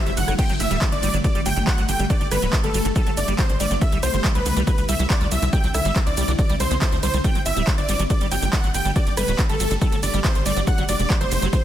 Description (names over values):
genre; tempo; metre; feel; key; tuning
uplifting trance; 140 BPM; 4/4; straight; G major; A4 = 440 Hz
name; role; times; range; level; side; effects
dense compressed supersaw; melody; 0.0-11.6 s; A4 to G5; -26 LUFS; right 1 dB; sidechain pumping, tape echo
clear grand piano; second line; 0.0-11.6 s; A4 to G5; -32 LUFS; equal; none
liquid acid bass; arpeggios; 0.1-11.6 s; D3 to D4; -30 LUFS; right 3 dB; analog chorus, sidechain pumping, tape echo
tight sequencer bass; bass; 0.1-11.5 s; D1 to D2; -24 LUFS; equal; sidechain pumping
big-room dance drum kit; drums; 0.1-11.6 s; crash cymbal, handclaps, hi-hat, ride cymbal, rim click, shaker; -28 LUFS; right 1 dB; none
electronic kick drum; drums; 0.4-11.6 s; none; -21 LUFS; equal; none
room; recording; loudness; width
digital ambience; dense, heavily limited modern master; -18 LUFS; side -11 dB against mid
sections
0.0-11.6 A section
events
none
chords
0.4 Gsus2; 3.8 Cadd9; 7.2 Gsus2; 10.7 Dadd9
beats
| 0.39 0.82 1.24 1.67 | 2.10 2.53 2.96 3.39 | 3.82 4.24 4.67 5.10 | 5.53 5.96 6.39 6.82 | 7.24 7.67 8.10 8.53 | 8.96 9.39 9.82 10.24 | 10.67 11.10 11.53